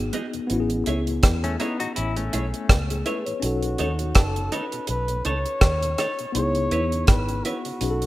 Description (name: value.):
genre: lovers rock reggae.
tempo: 82 BPM.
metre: 4/4.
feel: swing 56% on 16ths.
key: unclear.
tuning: A4 = 437 Hz.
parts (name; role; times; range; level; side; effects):
mellow tonewheel organ; accompaniment; 0.0-8.1 s; E2 to D#4; -38 LUFS; right 2 dB; none.
tine electric piano; accompaniment; 0.0-8.1 s; B3 to C#5; -29 LUFS; left 2 dB; medium stereo tremolo, tape echo.
vintage muted fingered electric bass; bass; 0.0-8.1 s; F#1 to E2; -27 LUFS; equal; none.
twelve-string electric guitar; stabs; 0.1-7.7 s; B3 to C#5; -32 LUFS; right 2 dB; none.
deep reggae drum kit; drums; 0.1-8.1 s; hi-hat, kick drum, rim click; -22 LUFS; equal; none.
semi-hollow electric guitar; arpeggios; 1.4-3.2 s; A3 to F#4; -30 LUFS; left 4 dB; tremolo.
mellow flugelhorn; melody; 3.4-8.1 s; F#4 to C#5; -28 LUFS; equal; tape echo.
room: light reverb, small room ambience.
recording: rough home demo mix.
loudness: -21 LUFS.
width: side -16 dB against mid.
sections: 0.0-8.1 A section.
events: none.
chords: 0.5 Amaj7; 3.4 B9; 6.3 C#m7.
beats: | 0.50 1.23 1.96 2.69 | 3.42 4.16 4.89 5.62 | 6.35 7.08 7.81.